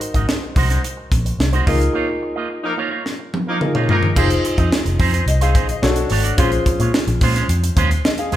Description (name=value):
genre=polished 1980s jazz-funk pop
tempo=108 BPM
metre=4/4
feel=straight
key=unclear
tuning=A4 = 440 Hz
part: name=clear concert grand piano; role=accompaniment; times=0.0-8.4 s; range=Db4 to F5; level=-23 LUFS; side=left 2 dB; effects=none
part: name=electric guitar with an envelope filter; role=riff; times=0.0-8.4 s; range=Ab3 to Eb5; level=-24 LUFS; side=right 4 dB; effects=none
part: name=crisp fusion drum kit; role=drums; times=0.0-8.4 s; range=crash cymbal, hi-hat, kick drum, snare drum, toms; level=-19 LUFS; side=equal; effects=none
part: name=vintage muted fingered electric bass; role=bass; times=0.1-8.4 s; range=F1 to Bb2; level=-19 LUFS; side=equal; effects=none
part: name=mellow horn section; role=second line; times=2.6-4.1 s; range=F3 to Bb4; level=-24 LUFS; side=equal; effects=none
room=wet large studio reverb, RT60 1.1 s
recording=band playing live in one room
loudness=-15 LUFS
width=side -13 dB against mid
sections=0.0-4.2 A section; 4.2-8.4 B section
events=break 1.9-4.2; band accent 1.9-4.2; drum fill 3.1-4.2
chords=0.0 Ab7; 1.7 Db69; 4.2 Fm7; 5.8 Bm9; 6.4 Bbm9